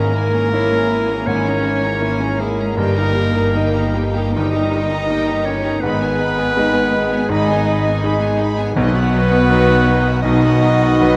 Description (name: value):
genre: classical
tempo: 80 BPM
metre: 4/4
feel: rubato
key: G# minor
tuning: A4 = 440 Hz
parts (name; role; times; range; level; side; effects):
- clear concert grand piano; melody; 0.0-11.2 s; G1 to D#5; -22 LUFS; equal; none
- rich chamber violin section; melody; 0.0-11.2 s; D#5 to B5; -34 LUFS; equal; none
- clear clarinet; second line; 0.0-11.2 s; G#4 to D#5; -23 LUFS; equal; none
- warm chamber violin section; second line; 0.0-11.2 s; D#4 to G#4; -32 LUFS; equal; none
- rich studio viola section; accompaniment; 0.0-11.2 s; F#3 to G4; -29 LUFS; equal; none
- clear trombone section; sustained chords; 0.0-11.2 s; D#3 to D#4; -30 LUFS; equal; none
- mellow French horn section; sustained chords; 0.0-11.2 s; G#3 to D#4; -26 LUFS; equal; none
- dark trumpet; stabs; 0.0-11.2 s; F#4 to A#4; -28 LUFS; equal; none
- dark chamber cello section; bass; 0.0-11.2 s; G#3 to D#4; -29 LUFS; equal; none
- warm chamber double bass section; bass; 0.0-11.2 s; G1 to B1; -26 LUFS; equal; none
- timpani; percussion; 8.8-9.8 s; B2; -27 LUFS; equal; none
room: light reverb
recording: close, detailed microphones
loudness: -17 LUFS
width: mono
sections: 0.0-11.2 A section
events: none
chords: 0.0 A#m7b5/G#; 2.8 D#/G; 5.8 G#m; 8.8 B